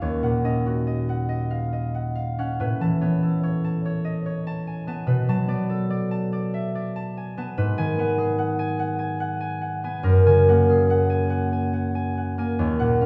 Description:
classical, solo harp piece; 48 BPM (dotted quarters); 6/8; rubato; F# major from 7.6 s; A4 = 443 Hz
concert harp; solo; 0.0-13.1 s; Eb2 to A5; -23 LUFS; equal
wet recital hall reverb, RT60 1.7 s; heard from further back in the room; -24 LUFS; mono
0.0-13.1 A section
0.0 Ebm7; 2.6 Aadd9; 5.1 Cbm7; 7.6 G#m7; 10.1 F#add9

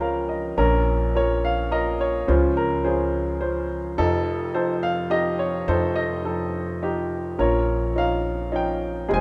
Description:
acoustic folk-pop ballad; 106 BPM; 3/4; straight; A4 = 440 Hz
warm upright piano; melody; 0.0-9.2 s; F1 to Ab5; -24 LUFS; equal
upright bass; bass; 0.0-9.2 s; F1 to F2; -30 LUFS; equal
light reverb; -23 LUFS; mono
0.6-9.2 A section
upright piano fill 0.0-0.6
0.0 Db6; 0.6 Bbm; 2.3 Dbmaj7; 4.0 F7; 7.4 Bbm

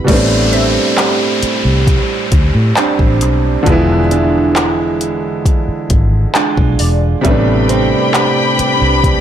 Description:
contemporary R&B; 67 BPM; 4/4; straight; A minor; A4 = 443 Hz
clear concert grand piano; accompaniment; 0.0-9.2 s; B2 to E4; -16 LUFS; equal
dark studio string section; sustained chords; 0.0-0.1, 7.2-9.2 s; D4 to B5; -16 LUFS; left 4 dB
fingerpicked acoustic archtop guitar; arpeggios; 0.0-9.2 s; A2 to F4; -18 LUFS; right 7 dB; ping-pong delay
vintage muted fingered electric bass; bass; 0.1-9.2 s; E1 to A2; -15 LUFS; equal
smooth R&B drum kit; drums; 0.1-9.2 s; crash cymbal, handclaps, hi-hat, kick drum; -15 LUFS; equal; soft clipping on snare
downlifter; sound effects; 0.1-7.2 s; -22 LUFS; left 1 dB
glassy wavetable pluck; texture; 0.5-8.7 s; D5 to E5; -28 LUFS; left 2 dB
little or no reverb; blown-out, overdriven recording, overdrive, low-pass filter; -10 LUFS; side -10 dB against mid
0.1-9.2 A section
0.1 Am11; 3.7 E7b9; 7.2 Am11

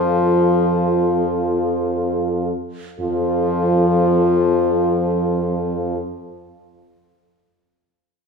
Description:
classical, lyrical piece for horn quartet; free time; F major; A4 = 440 Hz
mellow French horn; melody; 0.0-6.0 s; A4; -25 LUFS; left 10 dB
mellow French horn; second line; 0.0-6.0 s; F4; -23 LUFS; right 2 dB
warm French horn; accompaniment; 0.0-6.0 s; F3; -20 LUFS; left 3 dB
mellow French horn; bass; 0.0-6.0 s; F2; -22 LUFS; right 5 dB
wet scoring stage reverb, RT60 2.0 s; recorded in a church or concert hall; -16 LUFS; side -5 dB against mid
0.0-3.0 A section; 3.0-7.9 B section
slowing down 0.0-3.0
0.0 F

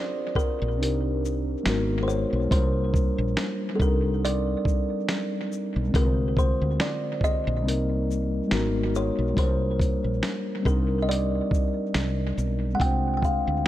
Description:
lo-fi hip hop; 70 BPM; 4/4; swing 56% on 16ths; C minor; A4 = 440 Hz
kalimba; melody; 0.0-13.7 s; A4 to G5; -30 LUFS; equal; low-pass filter, analog delay
mellow tine electric piano; accompaniment; 0.0-13.7 s; D3 to C5; -28 LUFS; left 1 dB; medium stereo tremolo, cassette tape, low-pass filter, analog delay
dusty soul sampler-style drum kit; drums; 0.4-13.7 s; finger snaps, hi-hat, kick drum, shaker, snare drum; -26 LUFS; equal; analog delay
woody fretless electric bass; bass; 0.6-13.6 s; Ab1 to D2; -27 LUFS; equal; wide subtle chorus
light reverb; echo-heavy mix; -23 LUFS; side -13 dB against mid
0.0-13.7 A section
0.0 Dm7b5/C; 0.8 Cm9; 1.7 Abm7; 2.5 Gm7/C; 3.8 Cm9; 5.9 Dm7b5/C; 7.7 Cm7; 8.5 Abm7; 9.4 Gm7/C; 10.7 Cm9; 12.8 Dm7b5/C

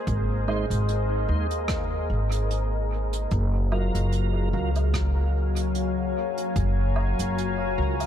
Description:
ambient dub; 74 BPM; 4/4; swing 55% on 16ths; A4 = 440 Hz
deep dark ambient pad; sustained chords; 0.0-8.1 s; Gb3 to Bb5; -29 LUFS; left 3 dB; chorus, built-in reverb
wind-like tuned noise texture; texture; 0.0-8.1 s; Bb3 to Bb4; -38 LUFS; equal; built-in reverb
upright bass; bass; 0.1-8.1 s; Gb1 to Eb2; -25 LUFS; equal
electronic kick drum; drums; 0.1-6.7 s; -30 LUFS; equal; overdrive
soft brush drum kit; drums; 0.1-8.1 s; hi-hat, rim click, woodblock; -37 LUFS; right 3 dB; dub echo
tonewheel organ; stabs; 0.5-8.0 s; Gb3 to C5; -34 LUFS; right 4 dB; chorus vibrato, slow rotary speaker, dub echo
small room ambience; dark, warm production; -23 LUFS; side -10 dB against mid
0.0-8.1 A section
0.0 Ab; 3.3 Gbmaj7

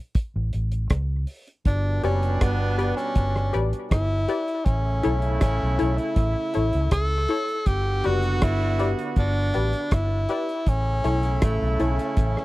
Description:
dub reggae; 80 BPM; 4/4; straight; G lydian; A4 = 435 Hz
cloth-damped thuddy drum kit; drums; 0.1-12.4 s; hi-hat, kick drum, rim click; -22 LUFS; equal
vintage muted fingered electric bass; bass; 0.4-12.3 s; F#1 to C#2; -24 LUFS; equal
breathy tenor saxophone; melody; 1.7-12.4 s; A3 to A4; -27 LUFS; equal; dub echo
warm horn section; second line; 1.7-12.4 s; B2 to F#4; -31 LUFS; right 3 dB; dub echo
filtered dub chord stab; stabs; 2.0-12.0 s; E4 to D5; -28 LUFS; left 4 dB; chorus, high-pass filter, dub echo
light reverb; dry, close 1970s-style studio recording; -21 LUFS; side -18 dB against mid
0.0-12.4 A section
break 0.0-1.7
0.0 A; 1.7 G; 4.7 A; 7.7 G; 10.7 A

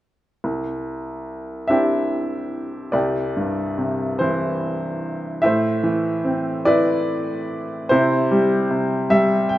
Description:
classical, lyrical solo piano; 49 BPM (dotted quarters); 6/8; rubato; C major; A4 = 442 Hz
bright upright piano; solo; 0.4-9.6 s; C2 to G5; -19 LUFS; equal
moderate recital hall reverb, RT60 1.6 s; -19 LUFS; side -14 dB against mid
0.5-2.9 A section; 2.9-9.6 B section
0.5 Cadd9; 5.4 Amadd9; 7.9 C

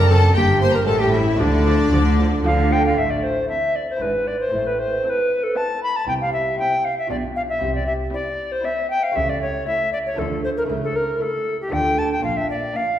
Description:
classical, baroque-style concerto movement with solo episodes; 116 BPM; 3/4; straight; A minor; A4 = 439 Hz
rich chamber violin section; melody; 0.0-13.0 s; E4 to C6; -28 LUFS; left 3 dB
tenor recorder; melody; 0.0-13.0 s; D4 to B5; -21 LUFS; left 1 dB
clear chamber violin section; second line; 0.0-13.0 s; D4 to C5; -31 LUFS; left 1 dB
lute; accompaniment; 0.0-13.0 s; F#2 to G4; -28 LUFS; right 2 dB
rich studio cello section; bass; 0.0-12.6 s; F#2 to D3; -26 LUFS; right 2 dB
rich studio double bass section; bass; 0.0-12.6 s; F#1 to D2; -23 LUFS; right 1 dB
rich chamber viola section; accompaniment; 0.1-13.0 s; F3 to D4; -31 LUFS; right 1 dB
wet recital hall reverb, RT60 1.7 s; heard from further back in the room; -18 LUFS; side -11 dB against mid
0.0-3.0 A section; 3.0-13.0 B section
0.3 Gm; 0.9 A7; 1.4 Dm; 3.0 Am; 4.0 E7/G#; 4.5 Am; 6.1 C; 7.1 G7/B; 7.6 C; 9.2 A7/C#; 10.2 Dm; 10.7 A/C#; 11.7 Dm; 12.2 Bb

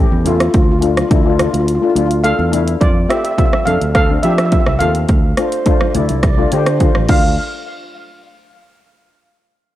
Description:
calypso; 105 BPM; 4/4; straight; D minor; A4 = 440 Hz
steel pan; melody; 0.0-7.4 s; A3 to F5; -18 LUFS; equal; cassette tape, tape echo
steel pan; accompaniment; 0.0-7.4 s; A3 to G4; -20 LUFS; left 8 dB; cassette tape
overdriven fingered electric bass; bass; 0.0-7.4 s; A1 to F3; -17 LUFS; equal
punchy analog drum machine; drums; 0.3-7.2 s; crash cymbal, hi-hat, kick drum, rim click; -15 LUFS; equal; overdrive, cassette tape
congas; percussion; 0.3-7.4 s; -28 LUFS; right 9 dB
baroque flute; second line; 5.4-7.4 s; C5 to F5; -22 LUFS; right 7 dB; cassette tape
small room ambience; home recording on cassette; -11 LUFS; side -14 dB against mid
0.0-2.8 A section; 2.8-7.4 B section; 7.4-9.7 C section
kick and snare drop out 1.7-2.8; drum fill 7.1
0.0 A7; 0.5 Dm; 2.8 F; 5.1 Dmadd9; 7.1 Dm; 7.4 N.C.

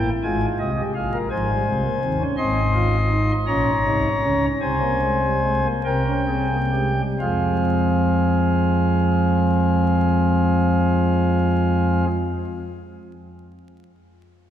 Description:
classical, baroque-style 4-part fugue for pipe organ; 42-56 BPM (dotted quarters); 6/8; straight; F minor; A4 = 445 Hz
pipe organ, flutes; solo; 0.0-12.1 s; Ab1 to C6; -18 LUFS; equal
wet church reverb, RT60 3.4 s; recorded in a church or concert hall, vinyl crackle; -18 LUFS; side -10 dB against mid
0.0-7.2 A section; 7.2-12.9 B section
slowing down 1.3-7.2
0.2 Fm/Ab; 3.5 Bbmadd9; 4.6 Abmaj9/C; 5.8 C5; 7.2 Fm

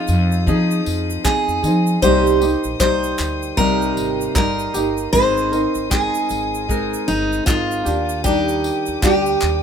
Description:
acoustic pop; 77 BPM; 4/4; swing 60% on 16ths; A4 = 440 Hz
picked steel-string acoustic guitar; melody; 0.0-9.6 s; Eb4 to C5; -20 LUFS; equal
flamenco guitar; accompaniment; 0.0-9.6 s; C3 to Bb4; -20 LUFS; equal
dark studio string section; sustained chords; 0.0-9.6 s; Ab4 to Eb6; -31 LUFS; left 5 dB
upright bass; bass; 0.1-9.6 s; G1 to F3; -23 LUFS; equal
natural country drum kit; drums; 0.1-9.6 s; handclaps, kick drum, tambourine; -22 LUFS; equal
egg shaker; percussion; 0.1-9.6 s; -33 LUFS; right 8 dB
light reverb; minimal, uncompressed stereo recording; -16 LUFS; side -7 dB against mid
0.0-9.6 A section
0.0 Fm7; 2.0 Cm7; 5.1 Abadd9; 7.9 Ebmaj7

